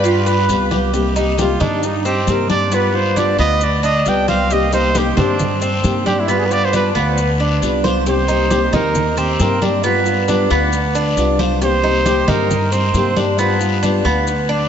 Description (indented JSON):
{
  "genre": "latin, Cuban son and guajira",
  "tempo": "135 BPM",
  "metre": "4/4",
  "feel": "straight",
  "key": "C minor",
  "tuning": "A4 = 440 Hz",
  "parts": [
    { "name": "warm trumpet", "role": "melody", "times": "0.0-13.2 s", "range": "D4 to G5", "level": "-20 LUFS", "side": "right 2 dB", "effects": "diffuse ambient delay" },
    { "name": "nylon-string guitar", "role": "accompaniment", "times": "0.0-14.3 s", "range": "C3 to G4", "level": "-21 LUFS", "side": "left 3 dB", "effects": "lush chorus" },
    { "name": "Cuban tres", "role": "arpeggios", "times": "0.0-14.7 s", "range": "B3 to C5", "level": "-19 LUFS", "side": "right 2 dB", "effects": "none" },
    { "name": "upright bass", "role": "bass", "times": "0.0-14.7 s", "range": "C2 to G2", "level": "-20 LUFS", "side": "equal", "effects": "none" },
    { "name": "congas", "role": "percussion", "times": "0.0-14.7 s", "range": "none", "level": "-25 LUFS", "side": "equal", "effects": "none" },
    { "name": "guiro", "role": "percussion", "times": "0.0-14.7 s", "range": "none", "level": "-30 LUFS", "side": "left 9 dB", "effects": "none" },
    { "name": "maracas", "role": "percussion", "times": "0.0-14.5 s", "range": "none", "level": "-34 LUFS", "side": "left 9 dB", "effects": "none" }
  ],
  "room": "wet lush hall reverb, RT60 2.6 s",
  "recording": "dreamy mix soaked in reverb, nothing above 7.8 kHz",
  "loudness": "-14 LUFS",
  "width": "side -8 dB against mid",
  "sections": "0.9-14.7 A section",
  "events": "trumpet solo 0.9-14.7",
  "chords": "0.0 G7; 0.9 Cm7; 2.7 G7; 4.5 Cm7; 6.3 G7; 8.1 Cm7; 9.8 G7; 11.6 Cm7; 13.4 G7"
}